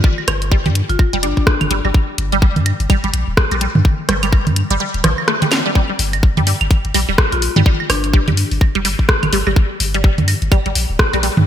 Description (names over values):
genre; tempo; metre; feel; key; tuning
minimal techno; 126 BPM; 4/4; swing 59% on 16ths; G minor; A4 = 441 Hz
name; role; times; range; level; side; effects
resonant blip pluck; riff; 0.0-11.3 s; F3 to A3; -21 LUFS; right 2 dB; phaser, analog chorus, sidechain pumping, ping-pong delay
electronic kick drum; drums; 0.0-11.1 s; none; -13 LUFS; equal; none
booming analog drum machine; percussion; 0.2-11.4 s; claves, rim click, toms; -20 LUFS; right 3 dB; gated reverb, ping-pong delay
punchy sub bass; bass; 0.3-11.4 s; D1 to G2; -19 LUFS; equal; sidechain pumping
garage drum kit; drums; 0.3-11.3 s; hi-hat, rim click, snare drum; -20 LUFS; left 1 dB; gated reverb
marimba with medium hard mallets; melody; 0.9-1.4, 7.3-8.1 s; D4 to F4; -26 LUFS; left 5 dB; ping-pong delay
room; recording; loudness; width
light reverb; bright 1980s-style digital production; -13 LUFS; side -10 dB against mid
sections
0.0-11.5 A section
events
kick drops out 4.8-5.8; drum fill 5.5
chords
none